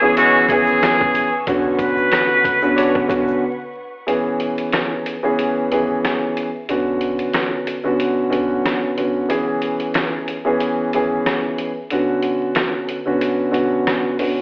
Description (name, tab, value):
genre	hip hop, boom-bap hip-hop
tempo	92 BPM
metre	4/4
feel	swing 54% on 16ths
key	unclear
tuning	A4 = 440 Hz
part	trumpet with metal mute	melody	0.0-2.9 s	F#4 to B4	-16 LUFS	equal	high-pass filter, low-pass filter, tape echo
part	dark baby grand piano	accompaniment	0.0-14.4 s	D3 to G#4	-18 LUFS	equal	high-pass filter, low-pass filter
part	dark studio string section	sustained chords	0.0-4.1 s	B4 to E6	-29 LUFS	equal	high-pass filter, low-pass filter
part	clear horn section	stabs	0.2-3.0 s	F#3 to C#5	-23 LUFS	left 1 dB	high-pass filter, low-pass filter, tape echo
part	trip hop sampler-style drum kit	drums	0.2-14.4 s	hi-hat, kick drum, rim click, snare drum	-23 LUFS	equal	none
part	egg shaker	percussion	0.2-3.4 s	none	-52 LUFS	left 1 dB	none
part	sub bass with octave	bass	0.5-11.2 s	E1 to B1	-42 LUFS	equal	none
room	light reverb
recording	played on a big sound system in a bare room, stone room reverb, vinyl crackle, telephone sound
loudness	-16 LUFS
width	side -28 dB against mid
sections	0.0-4.1 A section; 4.1-14.4 B section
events	break 3.4-4.1, 4.1-14.4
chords	0.0 E6; 1.5 Bmadd9; 4.1 E6; 6.7 Bmadd9; 9.3 E6; 11.9 Bmadd9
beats	0.17 0.82 | 1.47 2.12 2.77 3.43 | 4.08 4.73 5.38 6.04 | 6.69 7.34 7.99 8.64 | 9.30 9.95 10.60 11.25 | 11.91 12.56 13.21 13.86